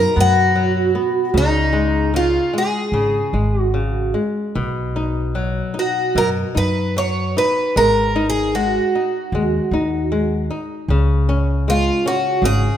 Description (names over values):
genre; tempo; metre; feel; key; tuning
fado-style ballad; 76 BPM; 4/4; rubato; unclear; A4 = 442 Hz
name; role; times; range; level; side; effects
picked twelve-string acoustic guitar; melody; 0.0-12.8 s; D#4 to C#5; -18 LUFS; right 1 dB; none
flamenco guitar; accompaniment; 0.0-12.8 s; B2 to D#4; -23 LUFS; left 3 dB; none
upright bass; bass; 0.0-12.7 s; G#1 to F#2; -20 LUFS; equal; none
room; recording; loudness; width
light reverb; minimal, uncompressed stereo recording; -16 LUFS; side -10 dB against mid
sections
0.0-12.8 A section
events
none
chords
0.0 B5; 1.3 C#5; 4.6 B; 7.8 G#5; 10.9 C#5